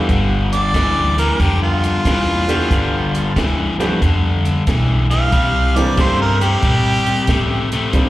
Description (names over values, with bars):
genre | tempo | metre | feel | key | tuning
electric blues shuffle | 92 BPM | 4/4 | swing 67% on 8ths | G mixolydian | A4 = 440 Hz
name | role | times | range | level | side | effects
clear upright piano | accompaniment | 0.0-8.1 s | Eb3 to G4 | -22 LUFS | right 2 dB | none
cranked stack guitar | riff | 0.0-8.1 s | G2 to A3 | -19 LUFS | left 3 dB | overdrive
upright bass | bass | 0.1-8.1 s | G1 to Bb2 | -19 LUFS | equal | none
compact cocktail drum kit | drums | 0.1-8.1 s | hi-hat, kick drum, snare drum | -21 LUFS | equal | none
clear harmonica | second line | 0.5-7.7 s | F4 to F5 | -20 LUFS | right 2 dB | overdrive, slapback echo
room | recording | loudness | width
studio reverb | live gig heard through the venue's PA, recital hall reverb | -14 LUFS | side -16 dB against mid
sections
0.0-8.1 A section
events
harmonica solo 0.0-8.1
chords
0.0 G9; 5.3 C9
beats
| 0.09 0.75 1.40 2.05 | 2.71 3.36 4.01 4.67 | 5.32 5.98 6.63 7.29 | 7.94